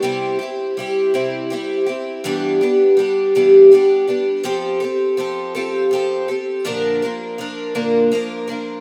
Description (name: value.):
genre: rock.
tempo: 54 BPM (dotted quarters).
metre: 6/8.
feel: straight.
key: C major.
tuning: A4 = 439 Hz.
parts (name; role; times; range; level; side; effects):
picked twelve-string acoustic guitar; solo; 0.0-8.8 s; G2 to Bb4; -17 LUFS; equal; subtle chorus.
room: wet plate reverb, RT60 3.0 s.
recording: rough home demo mix.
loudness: -17 LUFS.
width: mono.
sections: 0.0-8.8 A section.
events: none.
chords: 0.0 C; 2.2 G6; 4.4 Fadd9; 6.6 Bb.